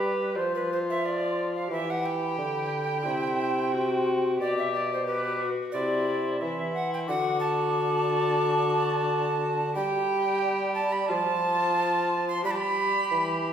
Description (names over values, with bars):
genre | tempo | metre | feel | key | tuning
classical, renaissance-style consort dance | 90 BPM | 4/4 | straight | G major | A4 = 440 Hz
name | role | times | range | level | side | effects
baroque flute | melody | 0.0-13.5 s | B5 to D6 | -34 LUFS | left 4 dB | none
mellow tenor recorder | second line | 0.0-13.5 s | B4 to C6 | -28 LUFS | right 3 dB | none
rich viola | accompaniment | 0.0-13.5 s | E4 to G4 | -31 LUFS | left 4 dB | none
mellow bassoon | bass | 0.0-13.5 s | B2 to G3 | -30 LUFS | equal | none
room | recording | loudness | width
wet recital hall reverb, RT60 1.6 s | heard from further back in the room | -24 LUFS | side -8 dB against mid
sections
0.0-13.5 A section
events
none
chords
0.4 F5; 1.7 Em; 3.1 C; 4.4 G/B; 5.7 C; 7.1 D; 9.8 G; 11.1 F; 12.4 G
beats
0.36 1.03 | 1.71 2.38 3.06 3.73 | 4.40 5.07 5.74 6.41 | 7.08 7.75 8.43 9.09 | 9.76 10.43 11.10 11.77 | 12.44 13.11